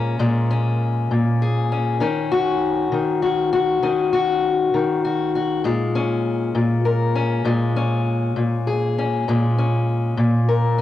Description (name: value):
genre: blues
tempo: 66 BPM (dotted quarters)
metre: 12/8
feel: straight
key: Bb minor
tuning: A4 = 440 Hz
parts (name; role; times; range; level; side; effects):
- fingerpicked steel-string acoustic guitar; solo; 0.0-10.8 s; Bb2 to Bb4; -18 LUFS; left 2 dB; none
room: moderate lush hall reverb, RT60 2.4 s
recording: home recording on cassette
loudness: -18 LUFS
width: side -12 dB against mid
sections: 0.0-10.8 A section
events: none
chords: 0.0 Bbm7; 2.0 Ebm7; 5.6 Bbm7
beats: 0.20 1.11 | 2.02 2.92 3.83 4.74 | 5.65 6.55 7.46 8.37 | 9.27 10.18